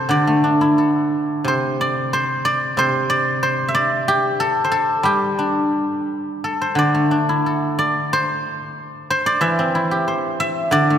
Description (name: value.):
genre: chinese traditional, Chinese solo plucked strings.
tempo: 90 BPM.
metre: 2/4.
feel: rubato.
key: unclear.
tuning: A4 = 444 Hz.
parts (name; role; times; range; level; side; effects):
guzheng; solo; 0.0-11.0 s; C3 to E5; -16 LUFS; equal; none.
room: wet church reverb, RT60 3.4 s.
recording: recorded in a church or concert hall.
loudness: -17 LUFS.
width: side -9 dB against mid.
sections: 0.0-6.8 A section; 6.8-11.0 B section.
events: none.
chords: none.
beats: | 0.09 0.77 | 1.44 2.12 | 2.77 3.42 | 4.07 4.72 | 5.38 6.08 | 6.77 7.45 | 8.12 8.77 | 9.42 10.07 | 10.73.